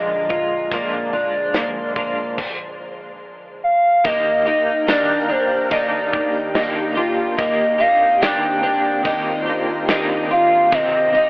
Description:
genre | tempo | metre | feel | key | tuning
dream pop | 72 BPM | 4/4 | straight | Eb major | A4 = 439 Hz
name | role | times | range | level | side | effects
warbly nostalgic lead | melody | 0.0-11.3 s | C5 to G5 | -18 LUFS | equal | chorus, tape echo
electric guitar at the edge of break-up | accompaniment | 0.0-11.3 s | Bb2 to G4 | -25 LUFS | equal | tremolo, analog chorus
ethereal airy pad | sustained chords | 0.0-11.3 s | C2 to Ab4 | -31 LUFS | equal | ensemble chorus, built-in reverb
fingerpicked twelve-string acoustic guitar | arpeggios | 0.0-11.3 s | D3 to F4 | -23 LUFS | equal | analog chorus, tape echo
loose indie drum kit | drums | 0.3-10.9 s | crash cymbal, hi-hat, kick drum, ride cymbal, snare drum, tambourine | -26 LUFS | equal | none
twinkling granular texture | texture | 1.2-10.0 s | F4 to G5 | -30 LUFS | equal | built-in reverb, tape echo
room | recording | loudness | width
moderate huge ambient reverb, RT60 7.8 s | worn, warbling old tape, cassette tape, warbly pitch drift, telephone sound | -16 LUFS | side -26 dB against mid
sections
0.0-4.0 A section; 4.0-11.3 B section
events
none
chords
0.0 Bb7; 4.0 Ebmaj7; 10.7 Cm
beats
| 0.72 1.55 2.38 3.22 | 4.05 4.88 5.72 6.55 | 7.38 8.22 9.05 9.88 | 10.72

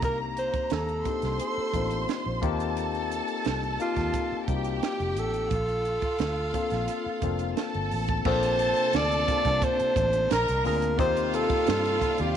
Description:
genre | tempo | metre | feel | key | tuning
lush 1970s-style soul | 88 BPM | 4/4 | straight | unclear | A4 = 440 Hz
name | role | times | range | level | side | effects
breathy alto saxophone | melody | 0.0-12.4 s | F4 to D5 | -27 LUFS | right 1 dB | none
warm studio violin section | second line | 0.0-12.4 s | Bb3 to C6 | -32 LUFS | equal | none
tine electric piano | accompaniment | 0.0-12.4 s | Bb3 to A4 | -32 LUFS | left 13 dB | medium stereo tremolo
vintage muted fingered electric bass | bass | 0.0-12.3 s | F1 to G2 | -31 LUFS | right 1 dB | none
compact cocktail drum kit | drums | 0.0-12.3 s | crash cymbal, hi-hat, kick drum, snare drum | -31 LUFS | right 5 dB | none
warm studio string section | sustained chords | 8.3-12.4 s | Bb2 to A4 | -36 LUFS | right 1 dB | none
room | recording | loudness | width
moderate spring reverb, RT60 2.3 s | 1960s-style stereo | -24 LUFS | side -9 dB against mid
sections
0.0-8.3 A section; 8.3-12.4 B section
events
none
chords
0.0 Eb6; 5.5 Bbmaj7; 8.3 Bbmaj9; 10.3 Bb7; 11.0 Eb69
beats
| 0.03 0.71 1.40 2.08 | 2.77 3.46 4.14 4.83 | 5.51 6.20 6.88 7.57 | 8.25 8.94 9.62 10.30 | 10.98 11.67 12.35

